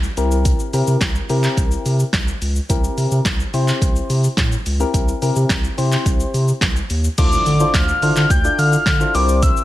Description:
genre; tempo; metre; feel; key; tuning
dance-pop; 107 BPM; 4/4; straight; unclear; A4 = 444 Hz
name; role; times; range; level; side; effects
saturated sub bass; bass; 0.0-9.5 s; C2 to D3; -18 LUFS; equal; sidechain pumping
deep house drum kit; drums; 0.0-9.6 s; crash cymbal, handclaps, hi-hat, kick drum, shaker, snare drum; -20 LUFS; equal; none
soft electric-piano-like synth keys; accompaniment; 0.2-9.6 s; C4 to D5; -23 LUFS; left 3 dB; chorus, sidechain pumping
soft octave-layered synth lead; melody; 7.2-9.6 s; D6 to G6; -18 LUFS; left 1 dB; chorus, digital delay
impact; sound effects; 7.2-9.4 s; none; -29 LUFS; right 1 dB; none
room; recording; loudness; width
little or no reverb; none; -15 LUFS; side -15 dB against mid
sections
0.0-7.2 A section; 7.2-9.6 B section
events
impact 7.2-9.4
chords
0.2 C7; 7.2 Dm9

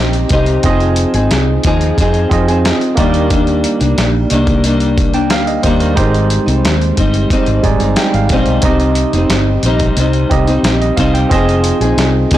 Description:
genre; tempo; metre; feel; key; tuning
indie pop, bedroom pop; 90 BPM; 4/4; straight; C minor; A4 = 440 Hz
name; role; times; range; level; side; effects
nylon-string guitar; accompaniment; 0.0-12.4 s; Ab2 to Ab4; -16 LUFS; left 3 dB; analog chorus, vibrato effect
tine electric piano; accompaniment; 0.0-12.4 s; G3 to Ab5; -17 LUFS; right 5 dB; cassette tape
vintage muted fingered electric bass; bass; 0.0-12.4 s; F1 to F2; -15 LUFS; equal; transformer saturation
dusty soul sampler-style drum kit; drums; 0.1-12.4 s; hi-hat, kick drum, snare drum; -17 LUFS; equal; overdrive
room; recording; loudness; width
little or no reverb; blown-out, overdriven recording, overdrive; -10 LUFS; side -13 dB against mid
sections
0.0-12.4 A section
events
tine electric piano fill 7.3-8.6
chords
0.0 Cm; 0.6 Fm7; 3.0 Ebmaj7; 6.0 Abmaj7; 8.6 Cm; 11.3 Fm7

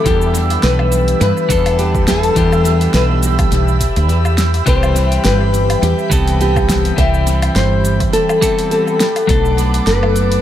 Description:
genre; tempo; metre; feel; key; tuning
sunset chillout; 104 BPM; 4/4; swing 55% on 16ths; E minor; A4 = 443 Hz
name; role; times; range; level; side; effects
nylon-string guitar; melody; 0.0-10.4 s; G4 to E5; -18 LUFS; left 2 dB; tape echo, shimmer reverb
clean electric guitar; accompaniment; 0.0-10.4 s; E3 to A4; -20 LUFS; moving between left 6 dB and right 6 dB; auto-pan, dub echo, shimmer reverb
airy breathy pad; sustained chords; 0.0-10.4 s; G4 to E6; -23 LUFS; left 1 dB; chorus, phaser, shimmer reverb
woody fretless electric bass; bass; 0.1-10.4 s; F#1 to G2; -15 LUFS; equal; lush chorus
deep house drum kit; drums; 0.1-10.4 s; hi-hat, shaker, snare drum, woodblock; -22 LUFS; equal; overdrive, studio reverb, tape echo
electronic kick drum; drums; 0.1-9.4 s; none; -19 LUFS; equal; overdrive, studio reverb
room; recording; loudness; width
light reverb, digital ambience; echo-heavy mix; -12 LUFS; side -11 dB against mid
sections
0.0-10.4 A section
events
none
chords
0.0 Em7; 4.7 Cmaj7; 9.0 Bm7

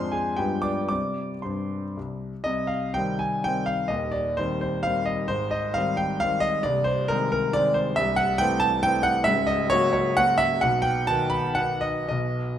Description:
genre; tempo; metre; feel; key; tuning
classical, romantic triple-time dance for piano with dotted rhythms; 97-145 BPM; 3/4; rubato; C minor; A4 = 437 Hz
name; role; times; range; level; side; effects
clear grand piano; solo; 0.0-12.6 s; C1 to D6; -22 LUFS; equal; none
room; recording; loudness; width
moderate recital hall reverb, RT60 1.7 s; none; -22 LUFS; side -10 dB against mid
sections
0.0-2.5 A section; 2.5-12.6 B section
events
none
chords
0.4 G7b9; 0.9 C5; 2.5 Cm; 3.9 Cm/Eb; 5.3 Abmaj7; 6.6 Ab/C; 8.0 Am/C; 9.3 F#/C#; 10.6 B

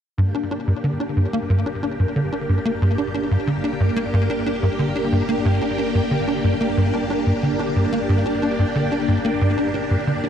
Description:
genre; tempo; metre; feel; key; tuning
ambient, sequencer-driven space music; 91 BPM; 4/4; straight; G minor; A4 = 440 Hz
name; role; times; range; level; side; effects
string machine, full ensemble; sustained chords; 0.2-10.3 s; Bb3 to G4; -23 LUFS; equal; phaser, ensemble chorus
tight sequencer bass; riff; 0.2-10.3 s; G2 to D4; -20 LUFS; equal; ensemble chorus, ping-pong delay
warm sub bass; bass; 0.2-10.3 s; G1; -44 LUFS; equal; none
room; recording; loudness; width
moderate huge ambient reverb, RT60 9.2 s; in a vast, echoing space; -18 LUFS; side -9 dB against mid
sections
0.2-10.3 A section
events
none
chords
0.2 Gm

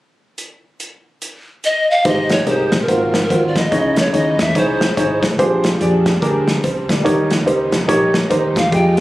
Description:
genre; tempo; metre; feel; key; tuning
uptempo gospel; 144 BPM; 4/4; swing 61% on 8ths; Ab major; A4 = 440 Hz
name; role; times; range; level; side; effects
natural country drum kit; drums; 0.4-9.0 s; hi-hat, kick drum, snare drum; -20 LUFS; equal; none
polished pan flute; melody; 1.7-5.2, 8.6-9.0 s; Bb4 to G5; -18 LUFS; equal; none
dark grand piano; accompaniment; 2.0-9.0 s; Ab2 to Eb5; -17 LUFS; equal; none
warm studio string section; sustained chords; 2.0-9.0 s; Fb3 to G4; -28 LUFS; right 1 dB; none
hollow-body short-scale fingered electric bass; bass; 2.0-9.0 s; Ab1 to F2; -22 LUFS; equal; none
room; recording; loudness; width
light reverb; recorded on a phone in the room, club reverb, compression; -13 LUFS; side -17 dB against mid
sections
0.4-2.1 A section; 2.1-9.0 B section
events
none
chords
0.4 N.C.; 2.1 Abmaj7; 2.9 Ab13; 3.7 Dbmadd9; 5.4 Bb13; 7.1 Eb7

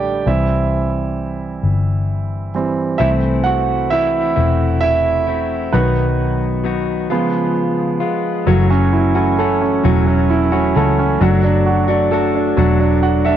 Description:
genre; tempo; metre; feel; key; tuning
six-eight pop ballad; 44 BPM (dotted quarters); 6/8; straight; F# minor from 8.5 s; A4 = 440 Hz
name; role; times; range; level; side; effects
clear concert grand piano; accompaniment; 0.0-13.4 s; D3 to G5; -17 LUFS; right 5 dB; cassette tape
vintage muted fingered electric bass; bass; 0.0-13.4 s; E1 to C#2; -18 LUFS; left 2 dB; none
direct-recorded clean electric guitar; arpeggios; 3.0-13.4 s; F#2 to F#4; -20 LUFS; left 10 dB; cassette tape, tape echo
room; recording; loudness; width
light reverb; home recording on cassette; -14 LUFS; side -10 dB against mid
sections
0.0-8.5 A section; 8.5-13.4 B section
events
grand piano solo 0.0-8.5; grand piano fill 12.6-13.4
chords
0.3 C; 3.0 Am/C; 5.7 B; 7.1 C#7; 8.5 F#m7; 11.2 D/F#

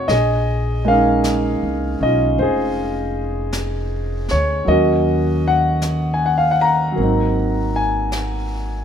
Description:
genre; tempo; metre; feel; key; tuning
jazz ballad; 52 BPM; 4/4; swing 68% on 8ths; unclear; A4 = 441 Hz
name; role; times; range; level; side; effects
warm concert grand piano; accompaniment; 0.0-8.8 s; Gb3 to Bb5; -18 LUFS; equal; none
upright bass; bass; 0.0-8.8 s; F1 to Eb2; -21 LUFS; equal; none
jazz brush drum kit; drums; 0.1-8.8 s; brushed snare drum, hi-hat, snare drum; -32 LUFS; right 1 dB; none
room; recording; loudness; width
light reverb; minimal, uncompressed stereo recording; -16 LUFS; side -8 dB against mid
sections
0.0-8.8 A section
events
none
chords
0.1 Bbm11; 4.7 Ebm7; 7.0 Ab9

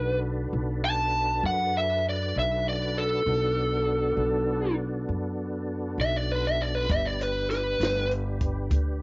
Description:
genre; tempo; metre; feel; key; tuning
slow blues; 66 BPM (dotted quarters); 12/8; straight; B minor; A4 = 440 Hz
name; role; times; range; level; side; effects
lead guitar through a small cranked amp; melody; 0.0-8.1 s; A4 to A5; -29 LUFS; equal; overdrive, cassette tape
tonewheel organ; sustained chords; 0.0-9.0 s; B3 to B4; -36 LUFS; equal; chorus vibrato, slow rotary speaker
upright bass; bass; 0.0-9.0 s; G1 to F#2; -32 LUFS; equal; none
compact cocktail drum kit; drums; 6.9-8.9 s; hi-hat, kick drum, snare drum; -31 LUFS; equal; cassette tape
room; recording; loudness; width
studio ambience; home recording on cassette, nothing above 7.6 kHz; -27 LUFS; mono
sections
0.0-9.0 A section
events
none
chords
0.0 Bm7; 6.9 G

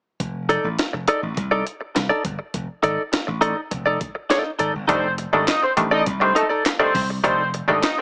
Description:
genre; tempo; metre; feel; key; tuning
funk; 102 BPM; 4/4; straight; F mixolydian; A4 = 440 Hz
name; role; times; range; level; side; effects
slap bass; bass; 0.2-7.8 s; F1 to C2; -30 LUFS; equal; none
breakbeat sampler-style drum kit; drums; 0.2-8.0 s; handclaps, hi-hat, kick drum, snare drum; -27 LUFS; equal; none
direct-recorded clean electric guitar; accompaniment; 0.5-8.0 s; Eb4 to Eb5; -23 LUFS; equal; subtle chorus, plate reverb
warm horn section; second line; 4.9-8.0 s; A3 to Eb5; -25 LUFS; equal; plate reverb
muted clav; stabs; 4.9-7.8 s; Eb3 to D4; -25 LUFS; equal; overdrive, plate reverb
room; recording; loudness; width
moderate small room reverb, RT60 0.5 s; small speaker sound; -21 LUFS; mono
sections
0.2-4.9 A section; 4.9-8.0 B section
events
none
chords
0.2 F13

